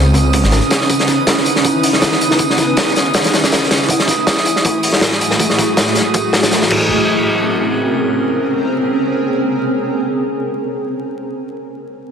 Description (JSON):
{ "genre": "drum and bass, jungle", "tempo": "160 BPM", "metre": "4/4", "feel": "swing 55% on 16ths", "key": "unclear", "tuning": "A4 = 439 Hz", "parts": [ { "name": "granular cloud pad", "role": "sustained chords", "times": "0.0-10.6 s", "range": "A3 to Cb5", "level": "-16 LUFS", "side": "equal", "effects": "built-in reverb" }, { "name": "detuned saw bass", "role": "bass", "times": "0.0-0.6 s", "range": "Ab1 to Db2", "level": "-12 LUFS", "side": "equal", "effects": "tube saturation" }, { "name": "drifting glass-harmonics texture", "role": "texture", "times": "0.0-6.9 s", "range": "Eb6", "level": "-22 LUFS", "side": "right 5 dB", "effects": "chorus, built-in reverb" }, { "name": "crunchy breakbeat drum kit", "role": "drums", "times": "0.1-6.8 s", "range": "crash cymbal, hi-hat, kick drum, snare drum", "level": "-16 LUFS", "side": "equal", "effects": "high-pass filter on kick, high-pass filter on hats, high-pass filter on cymbals, high-pass filter on snare, high-pass filter on room" }, { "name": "crunchy breakbeat drum kit", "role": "drums", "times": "0.1-6.7 s", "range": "hi-hat, snare drum, tambourine", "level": "-22 LUFS", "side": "left 1 dB", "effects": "high-pass filter on hats, high-pass filter on snare, high-pass filter on perc, high-pass filter on room" } ], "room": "wet digital room reverb, RT60 1.0 s, small room ambience", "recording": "dense, heavily limited modern master, vinyl crackle", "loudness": "-12 LUFS", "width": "side -7 dB against mid", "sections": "0.0-6.9 A section; 6.9-9.9 B section", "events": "none", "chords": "0.0 Dbm9; 3.1 Gbm9; 6.7 Bbm9", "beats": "0.15 0.52 | 0.90 1.27 1.65 2.02 | 2.40 2.77 3.15 3.52 | 3.90 4.27 4.65 5.02 | 5.40 5.77 6.15 6.52 | 6.90 7.27 7.65 8.02 | 8.40 8.77 9.15 9.52" }